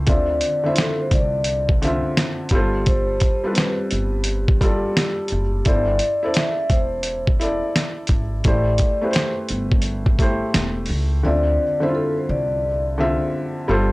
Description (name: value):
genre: lo-fi hip hop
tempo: 86 BPM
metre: 4/4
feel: swing 64% on 16ths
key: D minor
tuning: A4 = 443 Hz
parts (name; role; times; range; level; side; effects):
- felt-muted upright piano; accompaniment; 0.0-13.9 s; D3 to E5; -24 LUFS; equal; low-pass filter, plate reverb
- upright bass; bass; 0.0-13.9 s; E1 to D2; -24 LUFS; equal; transformer saturation
- vibraphone with soft mallets; melody; 0.1-12.8 s; A4 to E5; -23 LUFS; left 1 dB; low-pass filter, plate reverb
- dusty soul sampler-style drum kit; drums; 0.1-11.1 s; hi-hat, kick drum, snare drum; -19 LUFS; equal; vintage 12-bit sampler grit
room: light reverb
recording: dry, gritty hardware recording, transformer saturation, cassette tape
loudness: -18 LUFS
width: side -21 dB against mid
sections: 0.0-11.2 A section; 11.2-13.9 B section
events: none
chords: 0.1 Dm9; 2.5 G9sus4; 5.7 C6; 8.4 Am7; 11.2 Dm9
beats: | 0.07 0.77 1.47 2.17 | 2.86 3.56 4.26 4.96 | 5.65 6.35 7.05 7.75 | 8.45 9.14 9.84 10.54 | 11.23 11.93 12.63 13.33